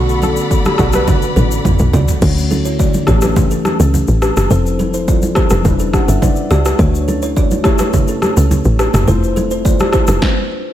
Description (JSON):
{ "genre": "afrobeats", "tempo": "105 BPM", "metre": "4/4", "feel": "straight", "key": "unclear", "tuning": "A4 = 439 Hz", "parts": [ { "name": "soft round pluck", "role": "melody", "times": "0.0-1.6 s", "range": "F#4 to B4", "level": "-22 LUFS", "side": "right 1 dB", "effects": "chorus, ping-pong delay" }, { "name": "mellow tine electric piano", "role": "accompaniment", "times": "0.0-10.2 s", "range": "D3 to F#5", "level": "-20 LUFS", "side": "left 4 dB", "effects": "none" }, { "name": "warm studio string section", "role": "sustained chords", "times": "0.0-2.2 s", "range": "A4 to B5", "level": "-23 LUFS", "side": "left 2 dB", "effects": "none" }, { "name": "kalimba", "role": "riff", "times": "0.0-10.2 s", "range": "C4 to D5", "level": "-22 LUFS", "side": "right 5 dB", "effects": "ping-pong delay" }, { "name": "woody log drum bass", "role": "bass", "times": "0.0-10.2 s", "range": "E1 to D2", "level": "-15 LUFS", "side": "equal", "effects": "none" }, { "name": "deep house drum kit", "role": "drums", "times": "0.1-10.4 s", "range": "crash cymbal, kick drum, rim click, shaker, snare drum, toms", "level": "-15 LUFS", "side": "equal", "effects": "overdrive" }, { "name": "congas", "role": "percussion", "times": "0.2-10.2 s", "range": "none", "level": "-22 LUFS", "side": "right 2 dB", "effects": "none" } ], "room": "light reverb", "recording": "none", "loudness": "-11 LUFS", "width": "side -12 dB against mid", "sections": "0.0-2.2 A section; 2.2-10.7 B section", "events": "drum fill 1.1-2.2; tine electric piano fill 5.6-6.8; stop 10.2-10.7", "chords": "0.0 Bm7; 2.2 Dmaj7; 3.1 A7; 4.5 Fmaj7; 5.6 Em7; 6.8 Dmaj7; 7.6 A7; 9.1 Fmaj7; 10.2 N.C." }